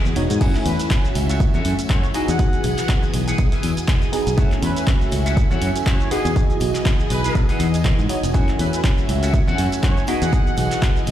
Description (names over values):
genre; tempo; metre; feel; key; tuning
filtered disco house; 121 BPM; 4/4; swing 56% on 16ths; F# dorian; A4 = 440 Hz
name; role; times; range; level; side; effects
funky polysynth comp; accompaniment; 0.0-11.1 s; A3 to G#5; -25 LUFS; equal; chorus, phaser, sidechain pumping
string machine, full ensemble; sustained chords; 0.0-11.1 s; E3 to D#6; -28 LUFS; equal; ensemble chorus, sidechain pumping
electric guitar with an envelope filter; riff; 0.0-11.1 s; E4 to F#5; -31 LUFS; equal; wide subtle chorus, sidechain pumping
modern bright fingered electric bass; bass; 0.1-11.1 s; E1 to G#2; -22 LUFS; equal; sidechain pumping
punchy analog drum machine; drums; 0.1-11.1 s; crash cymbal, handclaps, hi-hat, shaker; -29 LUFS; right 1 dB; sidechain pumping on perc, sidechain pumping on hats, sidechain pumping on cymbals
electronic kick drum; drums; 0.4-10.9 s; none; -19 LUFS; equal; none
tambourine; percussion; 0.4-11.1 s; none; -42 LUFS; right 3 dB; none
clear trumpet section; melody; 0.7-11.0 s; G#4 to F#5; -30 LUFS; right 1 dB; sidechain pumping
room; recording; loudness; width
light reverb; played on a big sound system in a bare room, large studio reverb; -17 LUFS; side -11 dB against mid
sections
0.0-11.1 A section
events
none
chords
0.4 F#m7; 2.1 Emaj7; 4.4 F#m7; 6.1 Emaj7; 8.3 F#m7; 10.1 Emaj7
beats
| 0.41 0.91 1.40 1.90 | 2.39 2.89 3.39 3.88 | 4.38 4.87 5.37 5.87 | 6.36 6.86 7.35 7.85 | 8.34 8.84 9.34 9.83 | 10.33 10.82